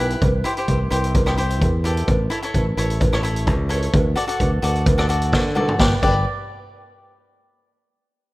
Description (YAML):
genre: calypso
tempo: 129 BPM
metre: 4/4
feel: straight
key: G major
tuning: A4 = 440 Hz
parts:
  - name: cavaquinho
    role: accompaniment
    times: 0.0-6.2 s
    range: E4 to D5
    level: -24 LUFS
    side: left 1 dB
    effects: none
  - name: fingered electric bass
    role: bass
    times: 0.0-6.2 s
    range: G1 to D3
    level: -21 LUFS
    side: equal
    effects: none
  - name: street-band drum kit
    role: drums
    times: 0.1-6.1 s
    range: crash cymbal, hi-hat, kick drum, rim click, snare drum, toms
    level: -21 LUFS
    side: equal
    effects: none
  - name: cowbell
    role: percussion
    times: 0.2-6.2 s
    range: none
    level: -27 LUFS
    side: right 2 dB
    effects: none
room: moderate plate reverb, RT60 2.1 s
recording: rough home demo mix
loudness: -17 LUFS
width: side -19 dB against mid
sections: 0.0-5.8 A section; 5.8-7.7 B section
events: drum fill 5.3-5.8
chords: 0.2 C; 2.1 A; 3.9 D; 5.8 G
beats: | 0.21 0.68 1.15 1.61 | 2.08 2.54 3.01 3.47 | 3.94 4.40 4.87 5.33 | 5.80